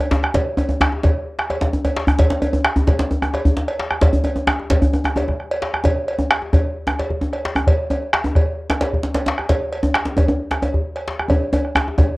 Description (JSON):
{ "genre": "west african traditional, West African drum ensemble", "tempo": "132 BPM", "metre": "4/4", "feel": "straight", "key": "none", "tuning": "none", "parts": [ { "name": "bombo", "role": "percussion", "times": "0.0-12.1 s", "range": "none", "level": "-19 LUFS", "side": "equal", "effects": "none" }, { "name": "cowbell", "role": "percussion", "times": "0.0-12.1 s", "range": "none", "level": "-25 LUFS", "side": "right 1 dB", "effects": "none" }, { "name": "djembe", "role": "percussion", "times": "0.1-12.1 s", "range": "none", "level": "-26 LUFS", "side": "left 2 dB", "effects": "none" }, { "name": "djembe", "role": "percussion", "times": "0.1-12.1 s", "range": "none", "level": "-20 LUFS", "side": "equal", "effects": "none" } ], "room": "light reverb", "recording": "worn, warbling old tape, cassette tape, warbly pitch drift", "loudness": "-17 LUFS", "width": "side -21 dB against mid", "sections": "0.0-12.2 A section", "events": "drum fill 11.3-12.2", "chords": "none" }